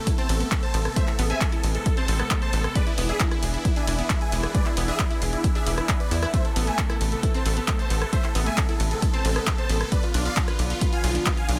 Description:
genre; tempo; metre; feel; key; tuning
uplifting trance; 134 BPM; 4/4; straight; A harmonic minor; A4 = 440 Hz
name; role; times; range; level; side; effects
supersaw chords; melody; 0.0-11.6 s; E4 to A5; -32 LUFS; equal; phaser, sidechain pumping, tape echo
lush unison pad; sustained chords; 0.0-11.6 s; C3 to G#4; -38 LUFS; equal; chorus, vintage 12-bit sampler grit, sidechain pumping
analog pluck; arpeggios; 0.1-11.5 s; G#3 to D5; -36 LUFS; equal; chorus, sidechain pumping, tape echo
electronic kick drum; drums; 0.1-11.4 s; none; -27 LUFS; equal; none
punchy analog drum machine; drums; 0.1-11.6 s; handclaps, hi-hat, ride cymbal, rim click; -33 LUFS; equal; none
tight sequencer bass; bass; 0.3-11.6 s; E1 to E2; -27 LUFS; equal; sidechain pumping
room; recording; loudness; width
digital ambience; none; -24 LUFS; mono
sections
0.0-11.6 A section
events
none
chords
0.0 Amadd9; 2.8 E7; 6.3 Amadd9; 9.9 Bdim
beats
0.07 0.52 | 0.96 1.41 1.86 2.31 | 2.75 3.20 3.65 4.10 | 4.55 4.99 5.44 5.89 | 6.34 6.79 7.23 7.68 | 8.13 8.58 9.02 9.47 | 9.92 10.37 10.81 11.26

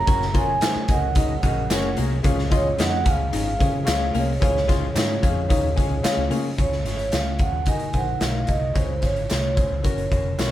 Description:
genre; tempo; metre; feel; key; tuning
uptempo 1960s-style soul; 110 BPM; 4/4; straight; Db major; A4 = 440 Hz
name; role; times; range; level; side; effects
vibraphone with soft mallets; melody; 0.0-10.5 s; C5 to Bb5; -26 LUFS; right 3 dB; none
percussive tonewheel organ; sustained chords; 0.0-6.6 s; F3 to Ab4; -36 LUFS; equal; slow rotary speaker, chorus vibrato
vintage muted fingered electric bass; bass; 0.0-10.5 s; F1 to Eb3; -26 LUFS; equal; none
clear concert grand piano; accompaniment; 0.1-10.5 s; Db3 to Ab5; -29 LUFS; left 4 dB; none
archtop guitar, miked and amplified; riff; 0.1-6.5 s; Bb3 to Gb4; -31 LUFS; left 6 dB; none
raw garage drum kit; drums; 0.1-10.5 s; hi-hat, kick drum, snare drum; -23 LUFS; equal; none
tambourine and handclaps; percussion; 0.1-10.5 s; none; -36 LUFS; right 2 dB; none
room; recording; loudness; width
light reverb; band playing live in one room; -19 LUFS; side -13 dB against mid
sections
0.0-6.6 A section; 6.6-10.5 B section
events
none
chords
0.0 Gbadd9; 2.2 Db; 7.7 Ebm; 8.8 Db; 9.8 Gb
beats
| 0.07 0.61 1.16 1.70 | 2.24 2.78 3.33 3.87 | 4.41 4.96 5.50 6.04 | 6.58 7.13 7.67 8.22 | 8.76 9.30 9.85 10.39

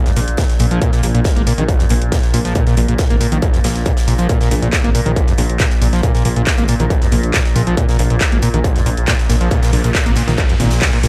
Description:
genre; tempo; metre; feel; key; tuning
driving peak-time techno; 138 BPM; 4/4; straight; unclear; A4 = 442 Hz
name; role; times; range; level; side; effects
screaming distorted acid line; riff; 0.0-11.1 s; Bb1 to Bb3; -21 LUFS; equal; distortion, analog chorus, sidechain pumping, tape echo
overtone-sweeping drone; drone; 0.0-11.1 s; Bb2; -27 LUFS; equal; chorus, built-in reverb, sidechain pumping
gated 80s drum kit; drums; 0.1-11.1 s; hi-hat, snare drum; -33 LUFS; equal; high-pass filter on hats, high-pass filter on snare, high-pass filter on room
punchy analog drum machine; drums; 0.1-11.1 s; handclaps, hi-hat; -25 LUFS; equal; none
dark detuned saw bass; bass; 0.2-11.1 s; Ab1 to Bb1; -20 LUFS; equal; sidechain pumping
electronic kick drum; drums; 0.4-10.9 s; none; -18 LUFS; equal; distortion
riser; sound effects; 9.0-11.1 s; none; -32 LUFS; equal; none
room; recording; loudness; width
light reverb; none; -15 LUFS; mono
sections
0.0-11.1 A section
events
riser 9.0-11.1; band accent 10.8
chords
0.0 Bb5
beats
0.38 | 0.82 1.25 1.69 2.12 | 2.56 2.99 3.42 3.86 | 4.29 4.73 5.16 5.60 | 6.03 6.47 6.90 7.34 | 7.77 8.21 8.64 9.08 | 9.51 9.95 10.38 10.82

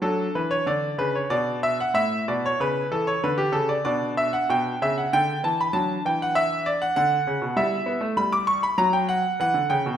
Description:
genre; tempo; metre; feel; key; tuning
classical, baroque-style suite movement for grand piano; 90-100 BPM; 3/4; rubato; D major; A4 = 439 Hz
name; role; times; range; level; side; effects
bright concert grand piano; solo; 0.0-10.0 s; A2 to D6; -21 LUFS; equal; none
room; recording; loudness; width
moderate recital hall reverb, RT60 1.6 s; minimal, uncompressed stereo recording; -21 LUFS; side -9 dB against mid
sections
0.0-10.0 A section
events
none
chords
0.0 D; 2.0 A; 3.2 Bm9; 3.9 Bmadd11; 5.7 D; 7.0 Bmadd9; 7.6 Em/G; 8.8 N.C.; 9.4 F#7(no3)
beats
| 0.01 0.67 1.31 | 1.96 2.60 3.23 | 3.85 4.49 5.12 | 5.74 6.35 6.96 | 7.56 8.17 8.78 | 9.40

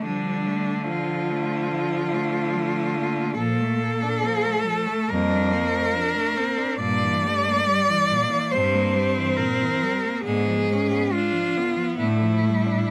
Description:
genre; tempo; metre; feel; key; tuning
classical, lyrical piece for cello ensemble; 70 BPM; 4/4; rubato; D minor; A4 = 440 Hz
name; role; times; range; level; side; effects
clear cello; melody; 0.0-12.9 s; D4 to D5; -26 LUFS; equal; none
clear cello; second line; 0.0-12.9 s; Bb2 to D4; -32 LUFS; equal; none
clear cello; accompaniment; 0.0-12.9 s; F3 to D4; -30 LUFS; equal; none
rich cello; bass; 0.0-12.7 s; F2 to D3; -29 LUFS; equal; none
room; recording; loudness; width
light reverb; none; -23 LUFS; mono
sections
0.0-12.9 A section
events
none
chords
0.0 Dm; 3.4 Bbmaj7; 6.8 Edim/G; 10.3 G#dim7; 12.0 Dm/A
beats
| 0.04 0.89 1.72 2.55 | 3.40 4.24 5.09 5.95 | 6.80 7.67 8.54 9.39 | 10.26 11.13 12.00 12.90

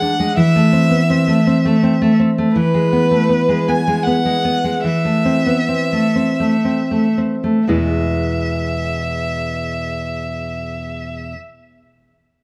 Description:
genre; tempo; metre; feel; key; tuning
romantic duo for violin and classical guitar; 55-84 BPM; 3/4; rubato; E major; A4 = 440 Hz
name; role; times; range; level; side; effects
clear violin; melody; 0.0-11.3 s; B4 to G#5; -23 LUFS; equal; none
nylon-string guitar; accompaniment; 0.0-11.4 s; E2 to G#4; -18 LUFS; equal; none
room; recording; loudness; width
light reverb; close, detailed microphones; -17 LUFS; mono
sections
0.0-7.7 A section; 7.7-12.4 B section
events
slowing down 1.5-7.7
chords
0.4 Am/E; 2.5 E; 4.8 Am/E; 7.7 E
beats
| 0.38 1.10 1.82 | 2.54 3.28 4.04 | 4.84 5.69 6.66 | 7.68 8.62 9.62 | 10.62

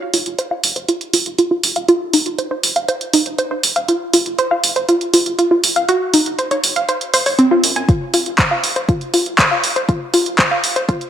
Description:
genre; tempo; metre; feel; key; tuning
melodic techno; 120 BPM; 4/4; straight; unclear; A4 = 440 Hz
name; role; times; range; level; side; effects
warbly dusty pluck; arpeggios; 0.1-11.0 s; C4 to Ab5; -16 LUFS; equal; chorus, sidechain pumping, tape echo
round analog bass; bass; 0.1-10.8 s; Eb1 to Gb2; -38 LUFS; equal; sidechain pumping, high-pass filter
punchy analog drum machine; drums; 0.1-11.1 s; handclaps, hi-hat; -16 LUFS; right 2 dB; sidechain pumping on hats, high-pass filter on hats, high-pass filter on snare, high-pass filter on room
electronic kick drum; drums; 7.9-11.0 s; none; -16 LUFS; equal; none
room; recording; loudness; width
moderate lush hall reverb, RT60 1.5 s; high-pass filter; -14 LUFS; side -10 dB against mid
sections
0.0-11.1 A section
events
build-up 0.0-11.1; filter sweep on synth arpeggio sound 0.0-11.1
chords
0.0 F5; 3.9 Gb5; 7.9 F5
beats
0.39 0.89 1.39 | 1.89 2.39 2.89 3.39 | 3.89 4.39 4.89 5.39 | 5.89 6.39 6.89 7.39 | 7.89 8.39 8.89 9.39 | 9.89 10.39 10.89

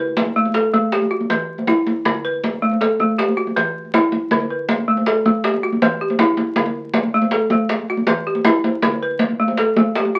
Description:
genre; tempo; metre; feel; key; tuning
west african traditional, West African string and xylophone music; 106 BPM (dotted quarters); 12/8; straight; D major; A4 = 439 Hz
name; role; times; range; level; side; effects
balafon; arpeggios; 0.0-10.2 s; D3 to B4; -20 LUFS; equal; none
djembe; percussion; 0.1-10.2 s; none; -22 LUFS; equal; none
room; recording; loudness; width
moderate studio reverb, RT60 0.5 s; very old 78 rpm record, vinyl crackle; -18 LUFS; mono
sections
0.0-10.2 A section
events
none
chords
0.0 D5; 0.9 Em; 2.1 D5; 3.2 Em; 4.3 D5; 5.4 Em; 6.6 D5; 7.7 Em; 8.8 D5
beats
0.36 0.93 1.49 | 2.06 2.62 3.19 3.75 | 4.31 4.88 5.44 6.01 | 6.57 7.13 7.70 8.26 | 8.83 9.39 9.96

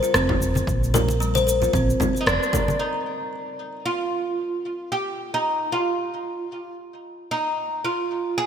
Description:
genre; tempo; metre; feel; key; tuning
organic downtempo; 113 BPM; 4/4; swing 56% on 16ths; unclear; A4 = 439 Hz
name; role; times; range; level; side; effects
kalimba; arpeggios; 0.0-2.7 s; G3 to C5; -24 LUFS; left 1 dB; digital delay
electronic cabasa, rim click and congas; drums; 0.0-2.8 s; none; -25 LUFS; left 1 dB; none
woody fretless electric bass; bass; 0.1-2.4 s; F1 to Bb1; -24 LUFS; equal; sidechain pumping
electronic kick drum; drums; 0.3-2.7 s; none; -26 LUFS; equal; none
congas; percussion; 0.4-2.8 s; none; -30 LUFS; left 1 dB; none
oud; melody; 2.2-8.5 s; D4 to Ab4; -25 LUFS; right 1 dB; digital delay
room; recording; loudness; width
wet plate reverb, RT60 2.6 s; bright 1980s-style digital production; -21 LUFS; side -8 dB against mid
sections
0.0-2.8 A section; 2.8-8.5 B section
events
band accent 2.3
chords
0.0 Bbsus2; 2.8 N.C.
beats
0.14 | 0.67 1.20 1.74 2.27 | 2.80 3.33 3.86 4.39 | 4.92 5.45 5.98 6.51 | 7.04 7.58 8.11

